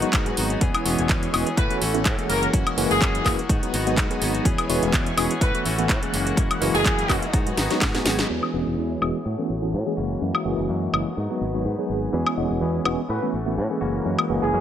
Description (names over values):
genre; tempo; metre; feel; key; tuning
filtered disco house; 125 BPM; 4/4; swing 54% on 16ths; E major; A4 = 440 Hz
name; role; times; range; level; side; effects
tine electric piano; accompaniment; 0.0-14.6 s; E3 to G#4; -26 LUFS; equal; overdrive, fast stereo tremolo, phaser, sidechain pumping, low-pass filter
string machine, full ensemble; sustained chords; 0.0-14.6 s; C#4 to A#5; -32 LUFS; equal; phaser, ensemble chorus, sidechain pumping, low-pass filter
direct-recorded clean electric guitar; riff; 0.0-14.6 s; D#3 to G#4; -32 LUFS; left 4 dB; sidechain pumping, low-pass filter
fingered electric bass; bass; 0.0-14.6 s; E1 to A2; -28 LUFS; equal; sidechain pumping, low-pass filter
house drum kit; drums; 0.0-14.3 s; crash cymbal, handclaps, hi-hat, snare drum, woodblock; -26 LUFS; left 1 dB; sidechain pumping on hats, low-pass filter on hats, low-pass filter on snare, sidechain pumping on perc, low-pass filter on perc, sidechain pumping on cymbals, low-pass filter on cymbals, low-pass filter on room
electronic kick drum; drums; 0.1-7.9 s; none; -23 LUFS; equal; none
bright horn section; melody; 1.6-7.4, 13.1-14.6 s; G#4 to B4; -27 LUFS; equal; sidechain pumping, low-pass filter, dub echo
room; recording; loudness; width
light reverb; none; -20 LUFS; side -10 dB against mid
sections
0.0-8.3 A section; 8.3-14.6 B section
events
drum fill 7.6-8.3; band accent 8.2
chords
0.0 G#m7; 0.6 E6; 1.6 A6; 2.3 F#7; 3.5 G#m7; 4.5 E6; 5.4 A6; 6.1 F#7; 7.3 G#m7; 8.3 E6; 9.3 A6; 10.0 F#7; 11.2 G#m7; 12.1 E6; 13.1 A6; 13.8 F#7